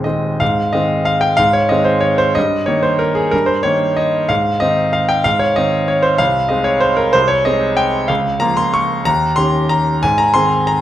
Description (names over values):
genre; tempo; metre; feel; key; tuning
classical, piano waltz; 187 BPM; 3/4; uneven beats, rubato; Ab major; A4 = 440 Hz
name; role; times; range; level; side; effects
clear concert grand piano; solo; 0.0-10.8 s; Eb1 to Db6; -13 LUFS; equal; none
room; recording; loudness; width
moderate recital hall reverb, RT60 1.3 s; none; -13 LUFS; side -12 dB against mid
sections
0.4-10.8 A section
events
none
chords
0.4 Ab; 2.4 Eb/G; 4.3 Ab; 6.2 Ab/C; 8.1 Bbm/Db; 9.1 Eb7; 10.0 Ab